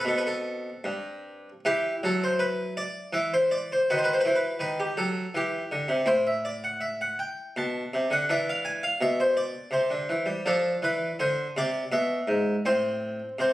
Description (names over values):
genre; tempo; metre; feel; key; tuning
classical, baroque-style suite movement for harpsichord; 82 BPM; 3/4; rubato; E minor, A minor from 10.5 s; A4 = 439 Hz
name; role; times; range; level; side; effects
harpsichord; solo; 0.0-13.5 s; G2 to A5; -24 LUFS; equal; none
room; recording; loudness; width
light reverb; recorded on a phone in the room, studio reverb; -24 LUFS; side -16 dB against mid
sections
0.0-1.7 A section; 1.7-13.5 A section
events
none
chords
0.0 Am; 1.7 Em9; 3.9 D#dim7; 5.4 Em; 6.1 Am; 8.3 E5; 9.7 Cadd9; 10.5 Dm; 11.9 E/B; 12.7 Am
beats
0.04 0.84 | 1.65 2.42 3.15 | 3.89 4.63 5.36 | 6.09 6.83 7.56 | 8.28 9.01 9.72 | 10.45 11.20 11.92 | 12.65 13.39